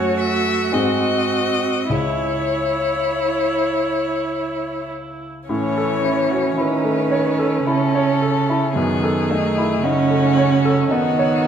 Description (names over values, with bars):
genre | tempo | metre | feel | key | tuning
classical, slow romantic movement for piano quartet | 48-56 BPM | 3/4 | rubato | unclear | A4 = 440 Hz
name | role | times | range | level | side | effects
rich violin | melody | 0.0-11.5 s | F#4 to E5 | -23 LUFS | left 7 dB | none
rich cello | second line | 0.0-11.5 s | C#3 to F#4 | -23 LUFS | right 6 dB | none
clear concert grand piano | accompaniment | 0.0-11.5 s | C#2 to C#5 | -23 LUFS | left 1 dB | none
warm viola | accompaniment | 0.0-11.5 s | A3 to E4 | -22 LUFS | right 3 dB | none
room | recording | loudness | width
wet recital hall reverb, RT60 1.3 s | none | -17 LUFS | side -8 dB against mid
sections
0.0-5.5 A section; 5.5-11.5 B section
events
none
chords
0.0 F#m; 0.7 G#; 1.9 C#m; 5.5 A; 8.8 D#m7b5/F#